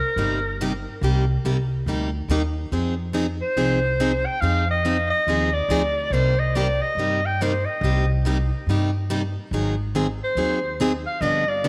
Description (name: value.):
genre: acoustic string swing (jazz manouche).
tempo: 141 BPM.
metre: 4/4.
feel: swing 64% on 8ths.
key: C minor.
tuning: A4 = 435 Hz.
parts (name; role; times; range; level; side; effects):
bright clarinet; melody; 0.0-11.7 s; Bb4 to G5; -26 LUFS; equal; tape echo.
picked plugged-in steel-string acoustic guitar; accompaniment; 0.2-11.7 s; C3 to Ab4; -28 LUFS; equal; none.
upright bass; bass; 0.2-11.7 s; G1 to G2; -26 LUFS; equal; none.
room: light reverb, small room ambience.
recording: none.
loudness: -23 LUFS.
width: mono.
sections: 0.0-11.7 A section.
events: none.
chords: 0.0 Cm9; 2.7 Fm7; 6.1 Cm7; 9.5 Ab7.